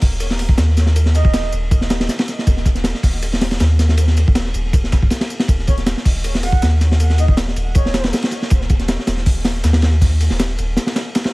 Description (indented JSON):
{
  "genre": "drum and bass, jungle",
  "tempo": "159 BPM",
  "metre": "4/4",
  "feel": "straight",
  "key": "Eb minor",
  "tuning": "A4 = 440 Hz",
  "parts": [
    { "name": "soft dub sub bass", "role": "bass", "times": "0.0-10.8 s", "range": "Eb1 to Eb2", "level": "-16 LUFS", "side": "equal", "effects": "tube saturation" },
    { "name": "breakbeat sampler-style drum kit", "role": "drums", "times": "0.0-11.2 s", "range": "hi-hat, snare drum, tambourine", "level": "-32 LUFS", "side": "right 1 dB", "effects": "high-pass filter on perc, high-pass filter on hats, high-pass filter on snare, high-pass filter on room, dub echo" },
    { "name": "crunchy breakbeat drum kit", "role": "drums", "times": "0.0-11.3 s", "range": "hi-hat, kick drum, ride cymbal, snare drum", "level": "-16 LUFS", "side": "equal", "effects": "dub echo" },
    { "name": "breathy flute-like synth lead", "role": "melody", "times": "1.1-1.5, 5.7-8.1 s", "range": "Db5 to Gb5", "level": "-29 LUFS", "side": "right 3 dB", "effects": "wide subtle chorus, vintage 12-bit sampler grit, dub echo" }
  ],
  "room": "studio reverb",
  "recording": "echo-heavy mix, vinyl crackle",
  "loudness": "-14 LUFS",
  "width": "side -22 dB against mid",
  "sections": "0.0-11.3 A section",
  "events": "none",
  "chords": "0.0 Eb5"
}